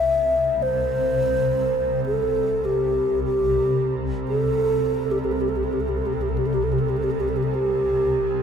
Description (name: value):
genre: world meditative, free-time meditation music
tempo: free time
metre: none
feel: none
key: C major pentatonic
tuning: A4 = 441 Hz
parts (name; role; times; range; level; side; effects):
- breathy mellow bass flute; melody; 0.0-8.4 s; G4 to E5; -21 LUFS; equal; diffuse ambient delay
- granular cloud pad; drone; 0.0-8.4 s; C2; -25 LUFS; equal; built-in reverb
- tubular bells; texture; 0.0-2.4 s; none; barely audible; none; none
room: wet cathedral reverb, RT60 4.8 s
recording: none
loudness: -20 LUFS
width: side -7 dB against mid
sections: 0.0-8.4 A section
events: none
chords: none